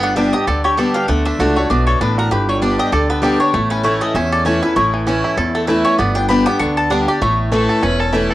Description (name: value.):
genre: bluegrass.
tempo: 196 BPM.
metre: 4/4.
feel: swing 56% on 8ths.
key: A mixolydian.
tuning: A4 = 440 Hz.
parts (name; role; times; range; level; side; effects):
mandolin; melody; 0.0-8.1 s; A4 to D6; -20 LUFS; left 1 dB; cassette tape, plate reverb.
picked acoustic archtop guitar; accompaniment; 0.0-8.3 s; E2 to G4; -17 LUFS; left 1 dB; cassette tape, plate reverb.
bluegrass banjo; arpeggios; 0.0-8.3 s; E3 to A4; -21 LUFS; right 3 dB; cassette tape, plate reverb.
upright bass; bass; 0.0-8.3 s; E1 to E2; -21 LUFS; equal; none.
clear fiddle; second line; 7.5-8.3 s; E4 to B4; -22 LUFS; left 3 dB; cassette tape, plate reverb, tape echo.
room: moderate booth ambience, RT60 0.2 s.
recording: home recording on cassette.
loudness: -13 LUFS.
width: side -15 dB against mid.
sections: 0.0-8.3 A section.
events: mandolin solo 0.0-8.3.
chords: 0.0 G; 1.1 D; 2.3 G; 3.5 A; 6.0 G; 7.2 A.